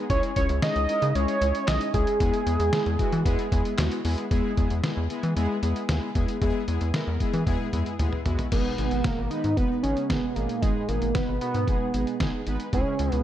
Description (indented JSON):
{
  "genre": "synth-pop",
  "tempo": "114 BPM",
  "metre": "4/4",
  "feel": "straight",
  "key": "unclear",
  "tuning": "A4 = 439 Hz",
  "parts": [
    { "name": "analog synth brass", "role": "accompaniment", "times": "0.0-13.2 s", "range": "G#3 to B4", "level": "-30 LUFS", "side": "left 2 dB", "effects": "chorus" },
    { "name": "wide unison lead", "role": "melody", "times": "0.1-3.7, 8.5-13.2 s", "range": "G#3 to D#5", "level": "-26 LUFS", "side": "right 2 dB", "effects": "none" },
    { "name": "rubbery square bass", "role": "bass", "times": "0.1-13.2 s", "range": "F#1 to E3", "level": "-27 LUFS", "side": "equal", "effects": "none" },
    { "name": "lo-fi sampler-style drum kit", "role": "drums", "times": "0.1-13.2 s", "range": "crash cymbal, handclaps, hi-hat, kick drum, snare drum, toms", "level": "-28 LUFS", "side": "equal", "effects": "none" }
  ],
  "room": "light reverb",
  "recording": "dark, warm production",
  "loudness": "-23 LUFS",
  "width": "side -12 dB against mid",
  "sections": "0.0-4.3 A section; 4.3-8.5 B section; 8.5-13.2 C section",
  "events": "drum fill 7.5-8.5",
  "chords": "0.1 C#madd9; 2.2 Eadd9; 4.3 E; 8.5 G#m; 12.7 C#m",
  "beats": "| 0.10 0.62 1.15 1.68 | 2.20 2.73 3.26 3.78 | 4.31 4.84 5.36 5.89 | 6.42 6.94 7.47 7.99 | 8.52 9.05 9.57 10.10 | 10.62 11.15 11.68 12.20 | 12.73"
}